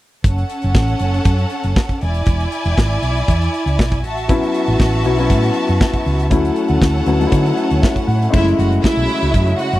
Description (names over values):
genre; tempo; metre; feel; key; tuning
disco; 119 BPM; 4/4; straight; F# minor; A4 = 440 Hz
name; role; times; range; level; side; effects
bright studio violin section; second line; 0.2-9.8 s; C#4 to A5; -21 LUFS; right 1 dB; none
hollow-body short-scale fingered electric bass; bass; 0.2-9.8 s; E1 to D3; -17 LUFS; equal; none
modern studio drum kit; drums; 0.2-9.8 s; crash cymbal, hi-hat, kick drum, snare drum; -16 LUFS; equal; none
warm grand piano; accompaniment; 4.3-9.8 s; F#3 to F#5; -18 LUFS; left 3 dB; none
dark studio string section; sustained chords; 8.3-9.8 s; C#3 to E4; -23 LUFS; right 1 dB; none
room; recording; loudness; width
studio ambience; dry, close 1970s-style studio recording; -14 LUFS; side -16 dB against mid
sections
0.2-8.3 A section; 8.3-9.8 B section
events
grand piano fill 6.8-8.3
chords
0.2 F#m; 2.0 E7; 4.0 A6; 6.3 Dmaj9; 8.3 F#m7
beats
| 0.24 0.75 1.26 1.76 | 2.27 2.77 3.28 3.79 | 4.29 4.80 5.30 5.81 | 6.31 6.82 7.32 7.83 | 8.33 8.84 9.34